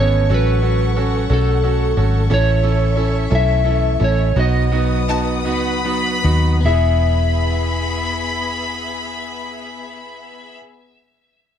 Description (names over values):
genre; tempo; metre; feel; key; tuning
six-eight pop ballad; 49-60 BPM (dotted quarters); 6/8; straight; E major; A4 = 440 Hz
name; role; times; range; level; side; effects
electric slide guitar; melody; 0.0-10.6 s; A4 to E5; -22 LUFS; equal; tape echo
clear concert grand piano; accompaniment; 0.0-10.6 s; B3 to A4; -24 LUFS; right 9 dB; none
warm studio string section; sustained chords; 0.0-10.6 s; B3 to D#6; -29 LUFS; left 3 dB; none
direct-recorded clean electric guitar; arpeggios; 0.0-10.7 s; E3 to G#4; -28 LUFS; left 15 dB; none
vintage muted fingered electric bass; bass; 0.0-10.6 s; E1 to D#2; -17 LUFS; equal; none
rich studio violin section; second line; 5.1-10.6 s; A5 to B5; -24 LUFS; left 3 dB; none
room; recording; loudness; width
little or no reverb; dry, close 1970s-style studio recording; -15 LUFS; side -9 dB against mid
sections
0.0-6.6 A section; 6.6-11.6 B section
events
slowing down 2.3-6.6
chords
0.3 F#m/A; 2.3 A; 4.4 B; 6.6 E